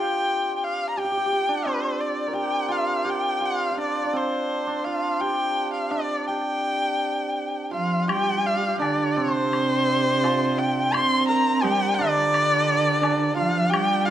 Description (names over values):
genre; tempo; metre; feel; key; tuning
chinese traditional, Chinese chamber ensemble; 85 BPM; 4/4; rubato; G yu mode; A4 = 442 Hz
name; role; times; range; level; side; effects
warm erhu; melody; 0.0-14.1 s; C5 to C6; -23 LUFS; left 2 dB; none
hammered dulcimer; second line; 0.0-14.1 s; C4 to C5; -26 LUFS; right 2 dB; none
warm cello; second line; 7.7-14.1 s; C3 to C4; -25 LUFS; right 4 dB; none
woodblock; percussion; 8.1-13.9 s; none; -32 LUFS; left 4 dB; none
room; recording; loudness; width
moderate recital hall reverb, RT60 1.4 s; close, detailed microphones; -21 LUFS; side -11 dB against mid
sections
0.0-8.1 A section; 8.1-14.1 B section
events
none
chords
none